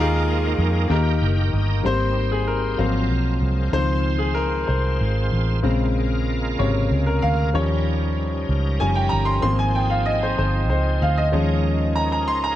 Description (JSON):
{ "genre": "slow gospel", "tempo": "63 BPM (dotted quarters)", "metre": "6/8", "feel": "straight", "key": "Ab major", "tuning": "A4 = 442 Hz", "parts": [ { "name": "bright saxophone section", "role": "melody", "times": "0.0-1.2 s", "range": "Ab3 to F4", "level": "-31 LUFS", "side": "right 2 dB", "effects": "none" }, { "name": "clear concert grand piano", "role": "accompaniment", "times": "0.0-12.6 s", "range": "C3 to C6", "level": "-22 LUFS", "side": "left 2 dB", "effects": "none" }, { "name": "bright tonewheel organ", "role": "sustained chords", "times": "0.0-12.6 s", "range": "F3 to G5", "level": "-30 LUFS", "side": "right 4 dB", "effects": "slow rotary speaker, overdrive, chorus vibrato" }, { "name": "vintage muted fingered electric bass", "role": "bass", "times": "0.0-12.6 s", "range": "Gb1 to F2", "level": "-21 LUFS", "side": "equal", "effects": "none" } ], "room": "light reverb, small room ambience", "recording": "none", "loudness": "-18 LUFS", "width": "side -13 dB against mid", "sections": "0.0-1.8 A section; 1.8-12.6 B section", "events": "tonewheel organ fill 0.9-1.8; grand piano solo 1.8-12.6", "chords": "0.0 Ebsus4; 0.9 Eb; 1.8 Abmaj7; 2.8 Ab13; 3.7 Dbmaj7; 5.6 Bbm7; 7.5 Eb7; 9.4 Ab6; 11.3 Eb7sus4", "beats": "0.90 | 1.84 2.79 | 3.74 4.69 | 5.64 6.59 | 7.54 8.49 | 9.44 10.38 | 11.33 12.28" }